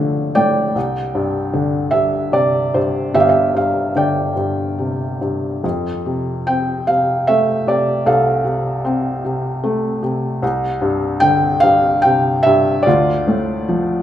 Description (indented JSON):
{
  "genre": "classical, lyrical solo piano",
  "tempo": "74 BPM",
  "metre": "3/4",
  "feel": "uneven beats, rubato",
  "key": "unclear",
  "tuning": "A4 = 439 Hz",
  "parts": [
    { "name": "felt-muted upright piano", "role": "solo", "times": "0.0-14.0 s", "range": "G1 to G5", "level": "-15 LUFS", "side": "equal", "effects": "none" }
  ],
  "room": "moderate recital hall reverb, RT60 1.7 s",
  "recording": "minimal, uncompressed stereo recording",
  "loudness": "-15 LUFS",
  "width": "side -11 dB against mid",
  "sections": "0.0-14.0 A section",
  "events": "none",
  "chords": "0.0 Dm; 0.8 Csus2; 5.6 F; 10.4 Csus2; 12.9 Dm"
}